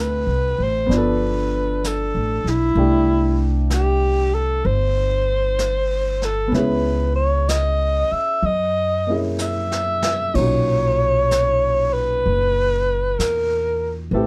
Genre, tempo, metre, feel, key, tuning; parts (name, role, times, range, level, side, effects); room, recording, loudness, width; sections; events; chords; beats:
jazz ballad; 64 BPM; 4/4; swing 66% on 8ths; A4 = 440 Hz
breathy alto saxophone; melody; 0.0-14.3 s; E4 to E5; -22 LUFS; equal
warm baby grand piano; accompaniment; 0.0-14.3 s; A#2 to B4; -28 LUFS; equal
upright bass; bass; 0.0-14.3 s; F#1 to F#2; -24 LUFS; equal
jazz brush drum kit; drums; 0.9-14.3 s; brushed snare drum, hi-hat, kick drum, ride cymbal, snare drum; -34 LUFS; equal
light reverb; -20 LUFS; mono
0.0-14.3 A section
drum fill 9.4-10.3
0.0 Dm9; 0.9 G9; 2.8 C69; 6.5 C#m7; 8.4 F#9; 10.3 Bmaj9
0.91 1.84 | 2.78 3.71 4.65 5.58 | 6.53 7.47 8.42 9.38 | 10.34 11.30 12.24 13.18 | 14.12